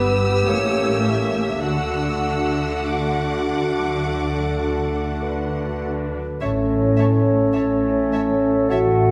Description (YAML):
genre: classical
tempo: 48-56 BPM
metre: 4/4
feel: rubato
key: D major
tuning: A4 = 440 Hz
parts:
  - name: warm studio violin section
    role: melody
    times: 0.0-8.8 s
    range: A5 to E6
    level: -33 LUFS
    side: equal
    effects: none
  - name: warm clarinet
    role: second line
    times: 0.0-9.1 s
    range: F#4 to B4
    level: -32 LUFS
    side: equal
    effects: none
  - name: warm studio violin section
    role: second line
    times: 0.0-8.8 s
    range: B4 to F#5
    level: -32 LUFS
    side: equal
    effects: none
  - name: mellow bassoon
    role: accompaniment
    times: 0.0-9.1 s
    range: A3 to B3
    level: -29 LUFS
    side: equal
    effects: none
  - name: warm studio viola section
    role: accompaniment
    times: 0.0-8.8 s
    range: B3 to C#5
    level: -32 LUFS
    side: equal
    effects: none
  - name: mellow French horn section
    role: sustained chords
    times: 0.0-9.1 s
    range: A3 to G4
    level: -26 LUFS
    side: equal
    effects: none
  - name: concert harp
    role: arpeggios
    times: 0.0-9.1 s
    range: G2 to A5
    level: -34 LUFS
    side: equal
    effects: none
  - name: rich studio double bass section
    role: bass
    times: 0.0-9.1 s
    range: G1 to D2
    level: -29 LUFS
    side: equal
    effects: none
  - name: warm studio cello section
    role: bass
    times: 0.0-9.1 s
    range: G2 to D3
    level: -29 LUFS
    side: equal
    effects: none
  - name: mellow hollow concert flute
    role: second line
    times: 6.4-9.1 s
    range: C#5 to F#5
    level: -27 LUFS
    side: equal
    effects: none
room: wet concert hall reverb, RT60 1.9 s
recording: none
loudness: -21 LUFS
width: mono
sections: 0.0-6.4 A section; 6.4-9.1 B section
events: none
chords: 0.5 A7b9; 1.6 D; 6.4 A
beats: 0.47 | 1.63 2.86 4.07 5.24 | 6.43 7.56 8.71